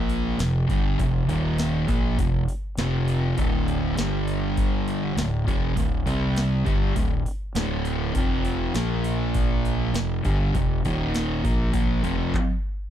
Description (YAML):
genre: stoner and doom metal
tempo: 100 BPM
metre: 4/4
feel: straight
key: unclear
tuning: A4 = 440 Hz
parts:
  - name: thick fuzz guitar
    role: riff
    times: 0.0-12.3 s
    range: D2 to C4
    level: -24 LUFS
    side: equal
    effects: distortion
  - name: fuzz fingered electric bass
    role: bass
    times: 0.0-12.3 s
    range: D1 to C2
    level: -29 LUFS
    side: equal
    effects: overdrive
  - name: booming analog drum machine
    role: drums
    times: 0.1-12.5 s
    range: handclaps, hi-hat, kick drum, snare drum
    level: -26 LUFS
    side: equal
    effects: none
room: little or no reverb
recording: dark, warm production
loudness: -22 LUFS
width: side -10 dB against mid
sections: 0.0-12.9 A section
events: stop 12.3-12.9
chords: 0.4 F5; 1.3 Eb5; 1.9 F5; 3.4 D5; 4.0 G5; 5.2 Dm; 6.1 C5; 6.7 D5; 8.2 F5; 8.8 Bb5; 9.9 F5; 10.8 Eb5; 11.4 F5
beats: 0.39 | 0.99 1.59 2.19 2.78 | 3.38 3.98 4.58 5.17 | 5.77 6.37 6.96 7.56 | 8.16 8.75 9.35 9.95 | 10.55 11.14 11.74 12.34